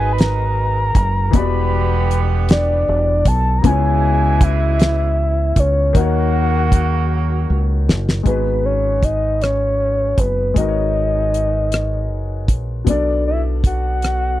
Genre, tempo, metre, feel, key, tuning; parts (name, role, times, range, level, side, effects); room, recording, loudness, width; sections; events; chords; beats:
slow six-eight R&B; 52 BPM (dotted quarters); 6/8; straight; G# minor; A4 = 442 Hz
soft octave-layered synth lead; melody; 0.0-14.4 s; B4 to B5; -20 LUFS; equal; chorus, slapback echo
warm grand piano; accompaniment; 0.0-14.4 s; B2 to D5; -25 LUFS; left 12 dB
warm horn section; stabs; 0.0-7.8 s; B2 to B4; -26 LUFS; right 8 dB
deep dub fingered electric bass; bass; 0.0-14.4 s; E1 to D#2; -18 LUFS; right 1 dB
damped 70s drum kit; drums; 0.2-14.2 s; hi-hat, kick drum, rim click, snare drum; -15 LUFS; equal
little or no reverb; dry, close 1970s-style studio recording; -15 LUFS; side -14 dB against mid
0.0-8.3 A section; 8.3-14.4 B section
drum fill 7.1-8.3
0.0 G#m9; 1.3 Em9; 3.6 C#m7; 5.9 D#m7; 8.3 G#m9; 12.9 Bm7
0.18 | 1.33 2.49 | 3.64 4.79 | 5.95 7.10 | 8.26 9.41 | 10.56 11.72 | 12.87 14.03